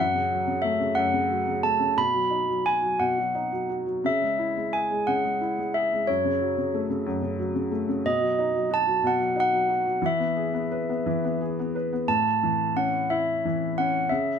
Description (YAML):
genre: children's music, lullaby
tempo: 60 BPM (dotted quarters)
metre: 6/8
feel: rubato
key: unclear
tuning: A4 = 440 Hz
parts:
  - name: handbells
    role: melody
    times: 0.0-14.4 s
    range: C#5 to B5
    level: -24 LUFS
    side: right 1 dB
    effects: none
  - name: felt-muted upright piano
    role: accompaniment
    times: 0.0-14.4 s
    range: F#2 to B4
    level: -27 LUFS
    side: left 1 dB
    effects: none
room: light reverb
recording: none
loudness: -23 LUFS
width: side -7 dB against mid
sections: 0.0-12.1 A section; 12.1-14.4 B section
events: none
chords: 0.0 F#m; 2.0 B; 4.1 C#m; 6.1 F#m; 8.0 B; 10.0 E; 12.1 A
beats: 0.98 | 1.99 3.01 | 4.05 5.08 | 6.08 7.07 | 8.05 9.04 | 10.03 11.05 | 12.08 13.10 | 14.10